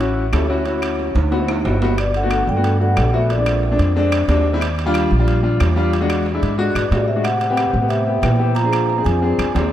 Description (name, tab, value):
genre	Afro-Cuban jazz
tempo	182 BPM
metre	4/4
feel	straight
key	unclear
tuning	A4 = 439 Hz
part	warm concert grand piano	accompaniment	0.0-9.7 s	G3 to A4	-20 LUFS	left 2 dB	lush chorus
part	upright bass	bass	0.0-9.7 s	G1 to Bb2	-19 LUFS	equal	none
part	timbales	percussion	0.0-9.7 s	none	-27 LUFS	right 6 dB	none
part	claves	percussion	0.3-9.6 s	none	-33 LUFS	left 4 dB	none
part	vibraphone with soft mallets	melody	2.0-3.9, 6.8-9.7 s	D5 to Bb5	-23 LUFS	equal	diffuse ambient delay
part	trombone with bucket mute	second line	2.0-3.9, 6.8-9.7 s	Bb2 to F3	-28 LUFS	right 4 dB	diffuse ambient delay
room	moderate lush hall reverb, RT60 2.0 s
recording	dreamy mix soaked in reverb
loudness	-15 LUFS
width	side -11 dB against mid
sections	0.0-2.0 A section; 2.0-9.7 B section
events	drum fill 1.2-2.0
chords	0.0 Dmaj7; 1.3 D13; 2.0 Gmaj9; 3.3 Bb7; 4.6 Ebmaj7; 5.9 E7; 7.2 Am7; 8.6 Bb7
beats	0.00 0.33 | 0.66 0.99 1.32 1.65 | 1.98 2.31 2.64 2.97 | 3.30 3.63 3.96 4.29 | 4.62 4.95 5.27 5.60 | 5.93 6.26 6.59 6.92 | 7.25 7.58 7.90 8.23 | 8.56 8.89 9.22 9.55